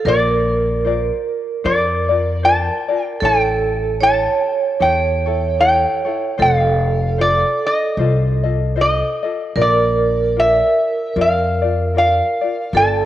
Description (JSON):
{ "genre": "Hawaiian", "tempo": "76 BPM", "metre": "4/4", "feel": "swing 57% on 8ths", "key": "unclear", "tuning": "A4 = 438 Hz", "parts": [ { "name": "metal-body resonator slide guitar", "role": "melody", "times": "0.0-13.1 s", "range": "D5 to A5", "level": "-17 LUFS", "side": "equal", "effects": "cassette tape" }, { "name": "vibraphone with medium mallets", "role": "second line", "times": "0.0-13.1 s", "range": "A4 to C#5", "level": "-21 LUFS", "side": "right 5 dB", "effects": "none" }, { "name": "tenor ukulele", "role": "accompaniment", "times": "0.0-13.1 s", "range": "E4 to Eb5", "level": "-24 LUFS", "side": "left 7 dB", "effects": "none" }, { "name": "upright bass", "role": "bass", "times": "0.0-13.1 s", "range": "F1 to F2", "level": "-20 LUFS", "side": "left 1 dB", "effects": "none" } ], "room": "light reverb, studio reverb", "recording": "home recording on cassette", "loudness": "-14 LUFS", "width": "side -13 dB against mid", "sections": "0.0-13.1 A section", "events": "none", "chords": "0.0 Bbadd9; 3.2 A7; 6.4 F7; 9.6 Bb" }